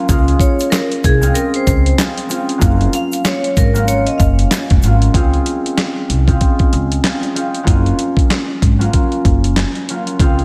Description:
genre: hip hop, boom-bap hip-hop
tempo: 95 BPM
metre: 4/4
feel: swing 60% on 16ths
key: Db major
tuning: A4 = 440 Hz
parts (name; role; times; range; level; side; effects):
- concert harp; accompaniment; 0.0-10.4 s; Gb3 to F4; -21 LUFS; equal; high-pass filter, low-pass filter
- upright bass; bass; 0.1-10.4 s; F1 to Db2; -17 LUFS; equal; none
- dusty soul sampler-style drum kit; drums; 0.1-10.4 s; handclaps, hi-hat, kick drum, snare drum; -18 LUFS; equal; none
- tube shaker; percussion; 0.1-5.0 s; none; -35 LUFS; equal; none
- vibraphone with medium hard mallets; melody; 0.4-4.5 s; Ab4 to F5; -23 LUFS; equal; high-pass filter, low-pass filter, diffuse ambient delay
room: light reverb, small room ambience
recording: none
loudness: -15 LUFS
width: mono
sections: 0.0-5.1 A section; 5.1-10.4 B section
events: none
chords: 0.1 Dbmaj7; 2.6 Gbmaj7; 5.1 Dbmaj7; 7.7 Gbmaj7

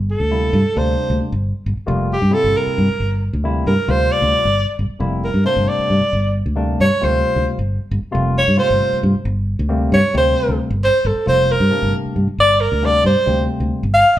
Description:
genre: electric jazz fusion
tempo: 268 BPM (eighths)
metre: 7/8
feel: straight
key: G dorian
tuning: A4 = 441 Hz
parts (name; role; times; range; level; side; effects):
- fingered electric bass; bass; 0.0-14.2 s; F1 to G2; -18 LUFS; equal; none
- breathy alto saxophone; melody; 0.1-14.2 s; G4 to F5; -16 LUFS; equal; none
- barky tine electric piano; accompaniment; 0.3-13.8 s; C3 to F4; -23 LUFS; left 2 dB; overdrive
room: moderate large studio reverb, RT60 1.0 s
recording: band playing live in one room, faint mains hum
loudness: -15 LUFS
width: side -13 dB against mid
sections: 0.0-14.2 A section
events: alto saxophone solo 0.0-14.2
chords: 0.0 Gm11

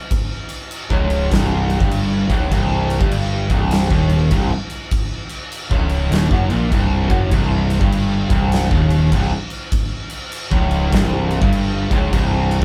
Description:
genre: stoner and doom metal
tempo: 100 BPM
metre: 4/4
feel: swing 64% on 8ths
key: unclear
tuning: A4 = 440 Hz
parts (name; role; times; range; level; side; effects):
- oversized low-tuned drum kit; drums; 0.1-12.6 s; crash cymbal, kick drum, snare drum; -22 LUFS; equal; none
- fuzz guitar; riff; 0.9-12.6 s; C2 to Bb2; -22 LUFS; equal; distortion
- fuzz picked electric bass; bass; 0.9-12.6 s; C1 to Bb1; -22 LUFS; equal; overdrive
room: moderate studio reverb, RT60 0.5 s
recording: band playing live in one room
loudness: -18 LUFS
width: mono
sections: 0.0-12.6 A section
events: none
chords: 0.0 Cm

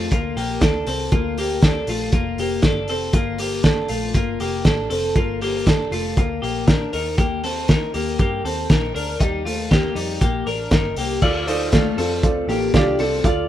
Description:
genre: jangly indie pop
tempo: 119 BPM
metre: 4/4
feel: straight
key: unclear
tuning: A4 = 440 Hz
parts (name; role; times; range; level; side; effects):
- twelve-string electric guitar; arpeggios; 0.0-13.5 s; G3 to D5; -22 LUFS; left 2 dB; none
- vintage muted picked electric bass; bass; 0.0-13.5 s; F1 to G2; -30 LUFS; equal; none
- cloth-damped thuddy drum kit; drums; 0.1-13.4 s; crash cymbal, hi-hat, kick drum, snare drum; -19 LUFS; equal; none
- warm upright piano; accompaniment; 11.2-13.5 s; F4 to F5; -23 LUFS; right 5 dB; none
room: light reverb, studio reverb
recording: rough home demo mix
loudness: -18 LUFS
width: side -12 dB against mid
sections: 0.0-11.2 A section; 11.2-13.5 B section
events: none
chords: 0.0 Gm7; 6.9 Eb

